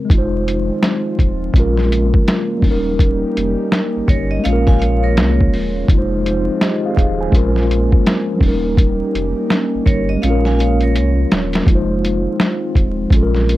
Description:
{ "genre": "lo-fi hip hop", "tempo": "83 BPM", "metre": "4/4", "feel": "swing 65% on 16ths", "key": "Bb dorian", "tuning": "A4 = 441 Hz", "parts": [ { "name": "mellow tine electric piano", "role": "accompaniment", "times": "0.0-13.6 s", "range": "Db3 to Ab5", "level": "-19 LUFS", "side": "equal", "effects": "medium stereo tremolo" }, { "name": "warbly tape-like pad", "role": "sustained chords", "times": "0.6-13.6 s", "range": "Db3 to G4", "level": "-24 LUFS", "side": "equal", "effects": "chorus, built-in reverb" }, { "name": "warm sub bass", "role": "bass", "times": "0.1-13.6 s", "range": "Eb1 to C2", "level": "-19 LUFS", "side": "equal", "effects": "none" }, { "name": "lo-fi sampler-style drum kit", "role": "drums", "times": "0.1-13.6 s", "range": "hi-hat, kick drum, snare drum", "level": "-14 LUFS", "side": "equal", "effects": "overdrive" }, { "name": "vibraphone with hard mallets", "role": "second line", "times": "4.1-11.6 s", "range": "Bb4 to Ab5", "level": "-25 LUFS", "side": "right 4 dB", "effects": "analog delay" } ], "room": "moderate small room reverb, RT60 0.5 s", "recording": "dark, warm production, vinyl crackle", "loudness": "-13 LUFS", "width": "side -16 dB against mid", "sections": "0.1-13.6 A section", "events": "drum fill 10.9-11.7", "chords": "0.1 Fm7; 1.6 Bbm7; 2.6 Eb7; 4.4 Bbm7; 5.9 Fm7; 7.3 Bbm7; 8.4 Eb7; 10.2 Bbm7; 11.7 Fm7", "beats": "| 0.10 0.83 1.55 2.27 | 3.00 3.72 4.44 5.16 | 5.89 6.61 7.33 8.06 | 8.78 9.50 10.22 10.95 | 11.67 12.39 13.12" }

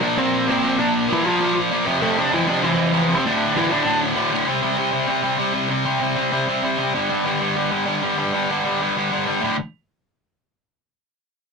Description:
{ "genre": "punk", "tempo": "194 BPM", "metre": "4/4", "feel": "straight", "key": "unclear", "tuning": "A4 = 444 Hz", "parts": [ { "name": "bluesy overdriven lead guitar", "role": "melody", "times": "0.0-4.0 s", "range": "E3 to D5", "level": "-21 LUFS", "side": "equal", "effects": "distortion" }, { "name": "sludgy distorted guitar", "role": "riff", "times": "0.0-9.6 s", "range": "D2 to C4", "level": "-19 LUFS", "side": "equal", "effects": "overdrive" } ], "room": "wet booth ambience, RT60 0.2 s", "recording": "rough rehearsal-room recording, tube saturation", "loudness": "-18 LUFS", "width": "side -4 dB against mid", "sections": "0.0-4.5 A section; 4.5-9.4 B section; 9.4-10.7 C section", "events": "none", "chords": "0.0 Bb; 1.9 F; 3.2 D5; 4.5 C5; 6.9 G5; 9.4 D5", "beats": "0.17 0.47 | 0.78 1.09 1.40 1.70 | 2.01 2.31 2.62 2.93 | 3.23 3.54 3.85 4.16 | 4.46 4.77 5.08 5.39 | 5.70 6.01 6.32 6.63 | 6.94 7.25 7.56 7.87 | 8.18 8.49 8.80 9.12 | 9.43" }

